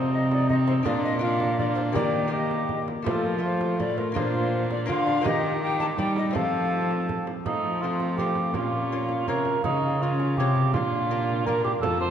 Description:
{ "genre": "classical, renaissance-style consort dance", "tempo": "164 BPM", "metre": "3/4", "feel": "straight", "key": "unclear", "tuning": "A4 = 440 Hz", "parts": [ { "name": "mellow alto recorder", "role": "melody", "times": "0.0-12.1 s", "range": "A4 to A5", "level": "-31 LUFS", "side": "left 6 dB", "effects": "none" }, { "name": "dark cor anglais", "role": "second line", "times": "0.0-12.1 s", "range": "Eb4 to C5", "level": "-28 LUFS", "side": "right 4 dB", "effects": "none" }, { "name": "dark viola", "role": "accompaniment", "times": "0.0-12.1 s", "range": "A3 to F4", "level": "-31 LUFS", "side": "equal", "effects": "none" }, { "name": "lute", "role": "accompaniment", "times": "0.0-12.1 s", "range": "F2 to Db5", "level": "-31 LUFS", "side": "left 3 dB", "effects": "none" }, { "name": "warm cello", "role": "bass", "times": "0.0-12.1 s", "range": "F2 to G3", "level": "-28 LUFS", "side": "right 1 dB", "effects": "none" }, { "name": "frame drum", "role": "percussion", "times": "0.3-12.0 s", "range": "none", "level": "-35 LUFS", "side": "right 4 dB", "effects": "none" } ], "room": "wet church reverb, RT60 3.3 s", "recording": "nothing above 10.5 kHz", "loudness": "-22 LUFS", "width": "side -9 dB against mid", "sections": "0.0-7.5 A section; 7.5-12.1 B section", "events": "none", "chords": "0.0 Cm; 0.9 Bb; 2.0 Eb; 3.1 F; 4.2 Bb; 5.2 Eb; 6.3 F; 8.6 Bbm; 9.6 Db; 10.7 Bb" }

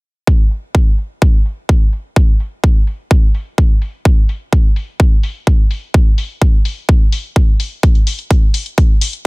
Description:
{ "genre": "EDM", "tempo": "127 BPM", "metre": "4/4", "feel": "straight", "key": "none", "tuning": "none", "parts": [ { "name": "electronic kick drum", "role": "drums", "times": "0.3-8.9 s", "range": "none", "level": "-10 LUFS", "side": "equal", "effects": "none" }, { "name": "electronic hi-hat", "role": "drums", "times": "0.5-9.3 s", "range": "none", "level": "-24 LUFS", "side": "left 5 dB", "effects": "low-pass filter on hats" } ], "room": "little or no reverb", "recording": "none", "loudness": "-11 LUFS", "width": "side -30 dB against mid", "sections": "0.3-9.3 A section", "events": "filter sweep on drum 0.3-9.3", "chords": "none" }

